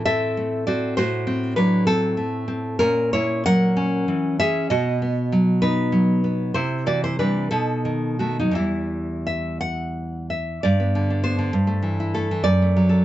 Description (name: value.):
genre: romantic piece for solo classical guitar.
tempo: 55-69 BPM (dotted quarters).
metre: 6/8.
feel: rubato.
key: E minor.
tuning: A4 = 439 Hz.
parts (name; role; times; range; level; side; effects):
nylon-string guitar; solo; 0.0-13.0 s; E2 to F#5; -19 LUFS; equal; none.
room: moderate small room reverb, RT60 0.6 s.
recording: nothing above 7.7 kHz.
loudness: -19 LUFS.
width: side -14 dB against mid.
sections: 0.0-10.6 A section; 10.6-13.0 B section.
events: none.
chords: 0.0 Am; 1.0 F#dim/A; 2.8 F#7/A#; 4.7 B; 6.5 C; 7.5 B7; 8.5 Em; 10.6 G; 11.5 Am7/G; 12.5 D/F#.